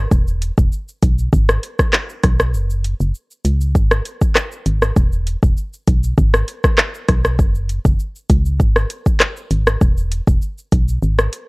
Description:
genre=dancehall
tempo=99 BPM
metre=4/4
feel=straight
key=unclear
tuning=A4 = 437 Hz
part: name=organ-like FM bass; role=bass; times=0.0-11.3 s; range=E1 to C#2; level=-17 LUFS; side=equal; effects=none
part: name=afro-pop drum kit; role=drums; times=0.1-11.5 s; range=handclaps, hi-hat, kick drum, rim click, shaker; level=-15 LUFS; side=equal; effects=overdrive
room=little or no reverb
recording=worn, warbling old tape, cassette tape, warbly pitch drift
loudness=-14 LUFS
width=side -28 dB against mid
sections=0.0-11.5 A section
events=break 2.5-3.8; kick muted 11.0-11.5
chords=none

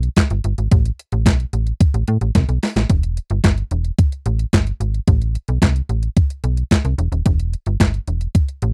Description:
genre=early-eighties boogie funk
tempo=110 BPM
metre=4/4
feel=straight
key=E minor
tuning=A4 = 440 Hz
part: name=slap-like FM bass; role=bass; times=0.0-8.7 s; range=D#1 to A2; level=-21 LUFS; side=equal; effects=none
part: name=crisp 8-bit digital drum machine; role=drums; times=0.0-8.7 s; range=handclaps, hi-hat, kick drum, snare drum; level=-17 LUFS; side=equal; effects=overdrive
room=little or no reverb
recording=dry, close 1970s-style studio recording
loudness=-18 LUFS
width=mono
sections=0.0-2.9 A section; 2.9-8.7 B section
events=drum fill 2.3-2.9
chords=none

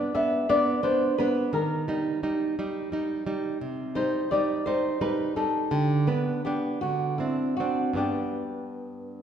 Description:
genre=romantic duo for nylon-string guitar and classical guitar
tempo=51-59 BPM (dotted quarters)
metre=12/8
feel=rubato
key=G major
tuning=A4 = 439 Hz
part: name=flamenco guitar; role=melody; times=0.0-9.2 s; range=E4 to E5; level=-27 LUFS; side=left 1 dB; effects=none
part: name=nylon-string guitar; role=accompaniment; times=0.0-9.2 s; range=G2 to Eb4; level=-27 LUFS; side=right 2 dB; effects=none
room=wet recital hall reverb, RT60 1.7 s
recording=recorded in a church or concert hall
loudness=-24 LUFS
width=side -8 dB against mid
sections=0.0-9.2 A section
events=none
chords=0.0 G (rootless); 1.5 Eb; 3.6 Cm; 5.7 G/D; 6.8 D9; 8.0 G

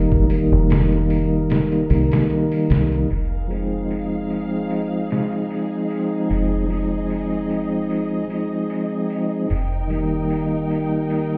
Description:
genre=trip hop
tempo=75 BPM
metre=4/4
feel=swing 55% on 16ths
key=F minor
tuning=A4 = 440 Hz
part: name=tonewheel organ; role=accompaniment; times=0.0-11.4 s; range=Eb3 to Eb4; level=-23 LUFS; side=equal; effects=slow rotary speaker, tremolo
part: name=deep dub fingered electric bass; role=bass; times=0.0-11.4 s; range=F1 to C2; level=-24 LUFS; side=equal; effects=none
part: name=flickering grainy texture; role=texture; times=0.0-11.4 s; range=Bb4 to Eb5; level=-39 LUFS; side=equal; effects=built-in reverb
part: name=trip hop sampler-style drum kit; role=drums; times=0.1-11.3 s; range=hi-hat, kick drum, snare drum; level=-25 LUFS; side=equal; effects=low-pass filter on kick, low-pass filter on hats, low-pass filter on snare, low-pass filter on room
part: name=rich studio violin section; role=sustained chords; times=3.1-11.4 s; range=Eb4 to G5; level=-35 LUFS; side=equal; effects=none
room=little or no reverb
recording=heard muffled through a wall, stone room reverb, EQ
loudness=-21 LUFS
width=mono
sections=0.0-3.1 A section; 3.1-11.4 B section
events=kick drops out 1.5-3.1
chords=0.0 Eb/F; 3.1 Fm7; 9.5 Eb/F

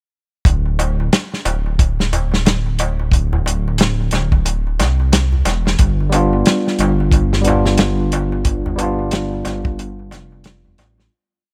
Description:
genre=trip hop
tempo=90 BPM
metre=4/4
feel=swing 59% on 16ths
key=unclear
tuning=A4 = 440 Hz
part: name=dark detuned saw bass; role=bass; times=0.5-11.1 s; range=D1 to C2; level=-20 LUFS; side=equal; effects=none
part: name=warm soul drum kit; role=drums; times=0.5-11.1 s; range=hi-hat, kick drum, snare drum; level=-18 LUFS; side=equal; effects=none
part: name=darbuka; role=percussion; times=0.5-11.1 s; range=none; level=-28 LUFS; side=equal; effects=none
part: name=tine electric piano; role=accompaniment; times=6.1-11.1 s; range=G3 to F4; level=-21 LUFS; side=equal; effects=harmonic tremolo, tape echo
room=studio ambience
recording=none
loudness=-17 LUFS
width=mono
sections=0.5-11.1 groove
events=fade-out 7.6-11.1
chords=0.5 N.C.; 5.8 G7

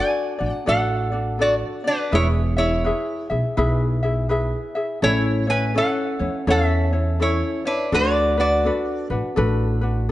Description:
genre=Hawaiian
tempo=83 BPM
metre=4/4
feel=swing 63% on 8ths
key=A major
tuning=A4 = 439 Hz
part: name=lap resonator guitar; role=melody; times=0.0-9.1 s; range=D4 to G#5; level=-22 LUFS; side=equal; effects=none
part: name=ukulele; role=accompaniment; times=0.0-10.1 s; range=C#4 to E5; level=-24 LUFS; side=left 2 dB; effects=none
part: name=upright bass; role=bass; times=0.4-10.1 s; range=E1 to E2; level=-22 LUFS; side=equal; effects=none
room=light reverb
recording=nothing above 10.9 kHz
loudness=-19 LUFS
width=side -15 dB against mid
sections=0.0-10.1 A section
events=none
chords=0.0 D; 2.1 E; 5.0 A; 7.9 D6

